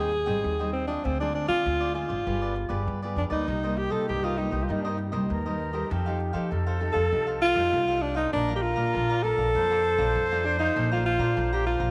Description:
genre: samba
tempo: 99 BPM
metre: 4/4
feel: straight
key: Bb major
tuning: A4 = 440 Hz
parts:
  - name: warm alto saxophone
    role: melody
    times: 0.0-11.9 s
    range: C4 to A4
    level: -28 LUFS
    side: equal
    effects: none
  - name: cavaquinho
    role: accompaniment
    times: 0.0-11.9 s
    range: Eb4 to Bb5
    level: -39 LUFS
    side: equal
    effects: none
  - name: nylon-string guitar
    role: accompaniment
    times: 0.0-11.9 s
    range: G2 to Ab4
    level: -38 LUFS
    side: equal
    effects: none
  - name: upright bass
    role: bass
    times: 0.0-11.9 s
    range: G1 to F3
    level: -32 LUFS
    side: equal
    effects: none
  - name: silver concert flute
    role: second line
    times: 3.5-11.9 s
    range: G4 to C5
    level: -35 LUFS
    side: equal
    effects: none
room: moderate echo chamber reverb, RT60 2.6 s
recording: none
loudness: -26 LUFS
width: mono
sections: 0.0-11.9 A section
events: none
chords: 0.0 Abmaj7; 1.0 Dm7b5; 2.3 G7b9; 3.5 Cm7; 5.9 F9; 8.3 Bbmaj7

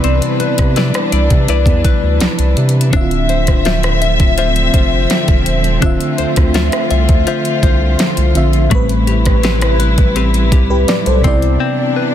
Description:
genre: contemporary R&B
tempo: 83 BPM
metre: 4/4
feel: straight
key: D dorian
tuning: A4 = 441 Hz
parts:
  - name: FM electric piano with soft pad layer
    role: accompaniment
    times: 0.0-12.1 s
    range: A2 to E5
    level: -18 LUFS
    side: equal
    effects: chorus, tremolo
  - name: warm studio string section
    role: sustained chords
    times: 0.0-12.1 s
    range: C3 to E5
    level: -20 LUFS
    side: equal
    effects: none
  - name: direct-recorded clean electric guitar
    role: arpeggios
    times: 0.0-12.1 s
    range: A3 to E5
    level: -20 LUFS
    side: left 10 dB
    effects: tremolo, tape echo
  - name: saturated sub bass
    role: bass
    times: 0.0-11.6 s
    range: D1 to C3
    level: -15 LUFS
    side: equal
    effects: none
  - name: smooth R&B drum kit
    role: drums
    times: 0.0-11.6 s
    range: hi-hat, kick drum, rim click, snare drum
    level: -14 LUFS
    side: equal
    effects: none
room: little or no reverb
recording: dense, heavily limited modern master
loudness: -11 LUFS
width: side -10 dB against mid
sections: 0.0-12.1 A section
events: break 11.6-12.1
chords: 0.0 Cmaj9; 2.9 Dm9; 8.7 Am9; 11.2 Cmaj9

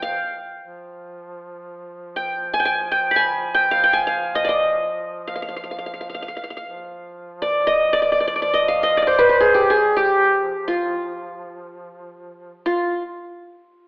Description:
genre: Turkish makam ensemble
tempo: free time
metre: none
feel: none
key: F makam nikriz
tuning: A4 = 441 Hz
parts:
  - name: qanun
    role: melody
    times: 0.0-13.0 s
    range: F4 to B5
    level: -17 LUFS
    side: equal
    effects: none
  - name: mellow duduk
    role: drone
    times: 0.0-12.7 s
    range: F3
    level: -36 LUFS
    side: equal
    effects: none
room: wet recital hall reverb, RT60 1.5 s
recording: telephone sound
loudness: -17 LUFS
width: side -29 dB against mid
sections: 0.0-12.7 A section; 12.7-13.9 B section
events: none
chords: none

